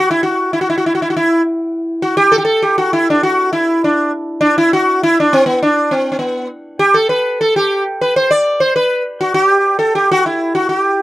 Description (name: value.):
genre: klezmer.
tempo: 101 BPM.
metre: 2/4.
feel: straight.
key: G major.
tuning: A4 = 440 Hz.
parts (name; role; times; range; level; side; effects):
sitar; solo; 0.0-11.0 s; B3 to D5; -12 LUFS; equal; none.
room: light reverb.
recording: dry, close 1970s-style studio recording.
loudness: -12 LUFS.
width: side -16 dB against mid.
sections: 0.0-1.7 A section; 1.7-11.0 B section.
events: none.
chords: none.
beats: | 0.54 1.14 | 1.73 2.33 | 2.92 3.52 | 4.11 4.71 | 5.31 5.90 | 6.50 7.09 | 7.69 8.29 | 8.88 9.48 | 10.07 10.67.